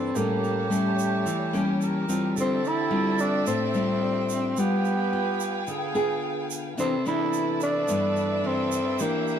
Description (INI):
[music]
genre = bossa nova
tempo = 109 BPM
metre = 4/4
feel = straight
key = C major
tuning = A4 = 440 Hz
[part]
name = growling tenor saxophone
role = melody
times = 0.0-9.4 s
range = A3 to E4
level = -27 LUFS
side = equal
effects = plate reverb
[part]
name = concert flute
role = second line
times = 0.0-9.4 s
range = G4 to Bb4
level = -32 LUFS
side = right 6 dB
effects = none
[part]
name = nylon-string guitar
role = accompaniment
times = 0.0-9.4 s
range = G2 to Ab4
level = -27 LUFS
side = left 2 dB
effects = none
[part]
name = warm concert grand piano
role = accompaniment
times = 0.0-4.8 s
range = A4 to D5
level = -38 LUFS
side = right 5 dB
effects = none
[part]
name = warm studio violin section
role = sustained chords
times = 0.0-9.4 s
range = G3 to A5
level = -34 LUFS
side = left 1 dB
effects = none
[part]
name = tube shaker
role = percussion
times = 0.2-9.4 s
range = none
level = -39 LUFS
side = right 7 dB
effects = none
[sound]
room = moderate studio reverb, RT60 0.5 s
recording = none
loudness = -23 LUFS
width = side -8 dB against mid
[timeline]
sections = 0.0-9.4 A section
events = none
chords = 0.2 A7b9; 2.4 Dm11; 4.6 G7b9; 6.8 Cmaj9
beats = | 0.16 0.71 1.26 1.81 | 2.37 2.92 3.47 4.02 | 4.58 5.13 5.68 6.23 | 6.79 7.34 7.89 8.44 | 9.00